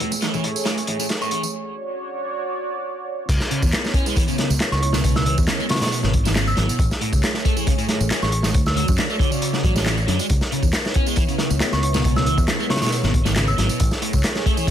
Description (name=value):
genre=breakbeat, breaks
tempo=137 BPM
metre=4/4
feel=straight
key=C# phrygian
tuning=A4 = 435 Hz
part: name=dark analog pad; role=sustained chords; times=0.0-14.7 s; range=A3 to D5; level=-28 LUFS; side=right 1 dB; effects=chorus, vintage 12-bit sampler grit, sidechain pumping
part: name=crunchy overdriven guitar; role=riff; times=0.0-14.7 s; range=G#2 to C#4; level=-26 LUFS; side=equal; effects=tube saturation, dub echo
part: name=crunchy breakbeat drum kit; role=drums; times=0.0-14.7 s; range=crash cymbal, hi-hat, kick drum, snare drum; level=-21 LUFS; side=equal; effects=low-pass filter on kick, low-pass filter on hats, low-pass filter on cymbals, low-pass filter on snare, low-pass filter on room
part: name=congas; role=percussion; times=0.0-1.5 s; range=none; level=-34 LUFS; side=left 4 dB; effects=none
part: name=fingered electric bass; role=bass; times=0.1-14.2 s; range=G#1 to F#2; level=-22 LUFS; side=equal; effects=tube saturation, high-pass filter
part: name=electronic tambourine and handclaps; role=drums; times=0.1-14.7 s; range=none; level=-29 LUFS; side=right 1 dB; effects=overdrive
part: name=soft synth bell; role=melody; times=1.2-1.4, 4.7-8.8, 11.7-13.8 s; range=C#6 to E6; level=-29 LUFS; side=right 1 dB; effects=chorus, phaser, AM radio sound, dub echo
room=light reverb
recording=high-pass filter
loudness=-18 LUFS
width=side -10 dB against mid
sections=0.0-3.3 A section; 3.3-14.7 B section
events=build-up 0.0-3.3; drum fill 0.0-1.5; filter sweep on drum 0.0-3.3; filter sweep 0.0-3.3; break 1.5-3.3; drop 3.3-14.7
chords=0.0 Amaj7; 1.5 Dmaj7; 3.3 C#m7; 6.8 Amaj7; 8.5 Dmaj7; 10.3 C#m7; 13.8 Amaj7